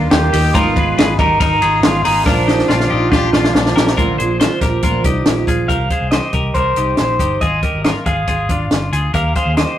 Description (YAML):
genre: jangly indie pop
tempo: 140 BPM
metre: 4/4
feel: straight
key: unclear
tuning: A4 = 439 Hz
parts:
  - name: electric guitar through a small old amp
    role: melody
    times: 0.0-9.8 s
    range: D4 to F5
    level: -18 LUFS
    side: equal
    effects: none
  - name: picked twelve-string acoustic guitar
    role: accompaniment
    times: 0.0-6.2 s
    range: Ab2 to Eb4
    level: -21 LUFS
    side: right 5 dB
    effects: none
  - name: twelve-string electric guitar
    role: arpeggios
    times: 0.0-9.8 s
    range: D4 to C5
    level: -20 LUFS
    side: left 2 dB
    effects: none
  - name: vintage muted fingered electric bass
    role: bass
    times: 0.0-9.6 s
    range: G1 to Eb2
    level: -20 LUFS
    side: equal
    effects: none
  - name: compact cocktail drum kit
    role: drums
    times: 0.1-9.7 s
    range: hi-hat, kick drum, ride cymbal, snare drum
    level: -17 LUFS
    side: equal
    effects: none
  - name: brilliant trumpet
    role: second line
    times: 2.7-4.0 s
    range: D4 to G4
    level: -22 LUFS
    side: left 4 dB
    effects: none
room: moderate studio reverb, RT60 0.6 s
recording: rough rehearsal-room recording, tube saturation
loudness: -12 LUFS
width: side -11 dB against mid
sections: 0.0-4.0 A section; 4.0-5.7 B section; 5.7-9.8 C section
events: drum fill 2.3-4.0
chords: 0.0 Eb; 0.5 Abm; 2.3 Bbadd9; 5.7 Cm7; 7.4 Ab5; 9.1 Eb